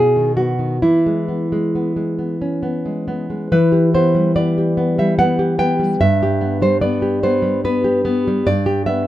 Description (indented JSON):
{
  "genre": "romantic piece for solo classical guitar",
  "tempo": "64-75 BPM",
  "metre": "3/4",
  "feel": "rubato",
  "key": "E major, E minor from 3.5 s",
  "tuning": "A4 = 443 Hz",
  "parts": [
    { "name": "nylon-string guitar", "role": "solo", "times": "0.0-9.1 s", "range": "G2 to G5", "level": "-15 LUFS", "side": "equal", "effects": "none" }
  ],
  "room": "light reverb",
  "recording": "minimal, uncompressed stereo recording",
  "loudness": "-15 LUFS",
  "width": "side -14 dB against mid",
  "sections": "0.0-3.5 A section; 3.5-9.1 B section",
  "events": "none",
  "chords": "0.0 B; 0.8 E; 3.5 Em; 6.0 G"
}